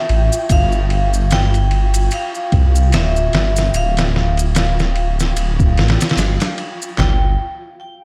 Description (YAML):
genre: trip hop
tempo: 74 BPM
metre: 4/4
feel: swing 57% on 16ths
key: unclear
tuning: A4 = 439 Hz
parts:
  - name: vibraphone with hard mallets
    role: melody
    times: 0.0-7.4 s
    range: E5 to G5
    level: -26 LUFS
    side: equal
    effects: tape echo
  - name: flickering grainy texture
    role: texture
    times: 0.0-7.0 s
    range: F4 to G5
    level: -33 LUFS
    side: equal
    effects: built-in reverb, analog chorus
  - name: dark detuned saw bass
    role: bass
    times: 0.1-7.4 s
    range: D1 to C2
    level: -18 LUFS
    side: equal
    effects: tube saturation
  - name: trip hop sampler-style drum kit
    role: drums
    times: 0.1-7.2 s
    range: handclaps, kick drum, ride cymbal, snare drum, toms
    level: -21 LUFS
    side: equal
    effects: none
  - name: maracas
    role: percussion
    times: 0.3-7.0 s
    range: none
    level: -32 LUFS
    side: equal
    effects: none
room: light reverb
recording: none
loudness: -16 LUFS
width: mono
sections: 0.0-7.0 A section; 7.0-8.0 B section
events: none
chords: 0.5 G5; 3.7 Dm; 7.0 N.C.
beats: | 0.50 1.31 2.12 2.93 | 3.74 4.55 5.36 6.17 | 6.98